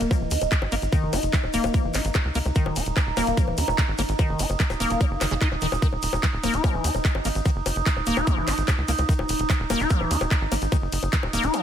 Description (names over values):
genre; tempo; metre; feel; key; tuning
psychedelic trance; 147 BPM; 4/4; straight; Eb phrygian; A4 = 439 Hz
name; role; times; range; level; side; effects
overtone-sweeping drone; sustained chords; 0.0-11.6 s; Eb4; -30 LUFS; right 4 dB; chorus, built-in reverb, phaser, sidechain pumping
liquid acid bass; riff; 0.0-11.6 s; Db3 to Fb4; -28 LUFS; left 2 dB; chorus, auto-pan, sidechain pumping, ping-pong delay
tight sequencer bass; bass; 0.0-11.5 s; Eb1 to Eb2; -27 LUFS; equal; none
garage drum kit; drums; 0.0-11.6 s; bongos, handclaps, hi-hat, ride cymbal; -29 LUFS; left 3 dB; none
tube shaker; percussion; 0.0-11.6 s; none; -38 LUFS; left 4 dB; none
electronic kick drum; drums; 0.1-11.2 s; none; -21 LUFS; equal; none
room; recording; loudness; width
light reverb, digital ambience; none; -21 LUFS; side -9 dB against mid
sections
0.0-11.6 A section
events
none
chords
0.0 Eb5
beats
0.11 0.52 | 0.93 1.33 1.74 2.15 | 2.56 2.97 3.37 3.78 | 4.19 4.60 5.01 5.42 | 5.82 6.23 6.64 7.05 | 7.46 7.86 8.27 8.68 | 9.09 9.50 9.90 10.31 | 10.72 11.13 11.54